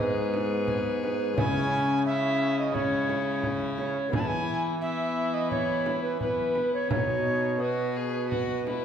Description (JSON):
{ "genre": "classical, renaissance-style consort dance", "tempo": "87 BPM", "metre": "4/4", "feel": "straight", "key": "unclear", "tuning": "A4 = 440 Hz", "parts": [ { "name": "rich violin", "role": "melody", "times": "0.0-8.8 s", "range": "D#4 to G#4", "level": "-37 LUFS", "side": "left 4 dB", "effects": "none" }, { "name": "tenor recorder", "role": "second line", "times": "0.0-8.8 s", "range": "B4 to A5", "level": "-28 LUFS", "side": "right 2 dB", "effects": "none" }, { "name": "lute", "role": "accompaniment", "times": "0.0-8.8 s", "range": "G#2 to D#5", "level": "-35 LUFS", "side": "left 3 dB", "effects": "none" }, { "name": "rich viola", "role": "accompaniment", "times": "0.0-8.8 s", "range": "B3 to C#4", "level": "-33 LUFS", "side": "left 4 dB", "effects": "none" }, { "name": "brilliant trombone", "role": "bass", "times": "0.0-8.8 s", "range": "G#2 to E3", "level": "-33 LUFS", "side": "right 1 dB", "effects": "none" }, { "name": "frame drum", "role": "percussion", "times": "0.0-8.8 s", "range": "none", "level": "-34 LUFS", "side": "right 2 dB", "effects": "none" } ], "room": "wet recital hall reverb, RT60 1.3 s", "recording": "heard from further back in the room", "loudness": "-25 LUFS", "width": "side -8 dB against mid", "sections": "0.0-8.8 A section", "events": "none", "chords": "0.0 G#m; 1.4 C#m; 4.1 E; 6.9 B", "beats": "0.68 | 1.37 2.06 2.74 3.43 | 4.13 4.82 5.51 6.21 | 6.91 7.61 8.31" }